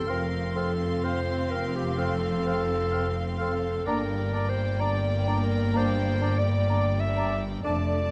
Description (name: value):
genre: classical, slow romantic movement for symphony orchestra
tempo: 64 BPM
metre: 4/4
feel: rubato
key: unclear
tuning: A4 = 440 Hz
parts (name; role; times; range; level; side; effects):
- rich studio violin section; melody; 0.0-8.1 s; G5 to C6; -44 LUFS; equal; none
- clear clarinet; second line; 0.0-8.1 s; G4 to E5; -33 LUFS; equal; none
- rich studio violin section; second line; 0.0-8.1 s; D5 to F5; -42 LUFS; equal; none
- clear studio viola section; accompaniment; 0.0-8.1 s; A3 to C4; -38 LUFS; equal; none
- warm French horn section; sustained chords; 0.0-8.0 s; A3 to F4; -38 LUFS; equal; none
- rich studio cello section; bass; 0.0-8.1 s; F2 to G2; -32 LUFS; equal; none
- rich studio double bass section; bass; 0.0-8.1 s; F1 to G1; -33 LUFS; equal; none
- clear oboe; second line; 0.1-7.8 s; D5 to F5; -41 LUFS; equal; none
- small flute group; second line; 0.1-7.8 s; A5 to C6; -40 LUFS; equal; none
- mellow bassoon; accompaniment; 0.1-7.8 s; C4 to D4; -40 LUFS; equal; none
room: moderate concert hall reverb, RT60 1.6 s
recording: none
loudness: -27 LUFS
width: mono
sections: 0.0-8.1 A section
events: none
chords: 0.1 F; 3.9 Gm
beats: | 0.10 1.04 1.99 2.93 | 3.87 4.80 5.74 6.68 | 7.64